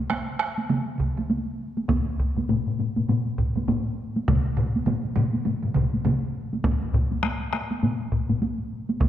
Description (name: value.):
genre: japanese traditional, taiko drum ensemble.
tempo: 101 BPM.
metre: 4/4.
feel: swing 60% on 16ths.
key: none.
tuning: none.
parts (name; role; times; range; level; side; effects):
taiko ensemble; percussion; 0.1-9.1 s; none; -28 LUFS; right 1 dB; none.
taiko ensemble; percussion; 0.1-9.1 s; none; -28 LUFS; right 4 dB; none.
solo taiko drums; percussion; 1.0-9.1 s; none; -27 LUFS; equal; none.
taiko ensemble; percussion; 1.9-8.4 s; none; -27 LUFS; left 3 dB; none.
room: wet concert hall reverb, RT60 1.8 s.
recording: dark, warm production.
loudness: -23 LUFS.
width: side -11 dB against mid.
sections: 0.0-9.1 A section.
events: none.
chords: none.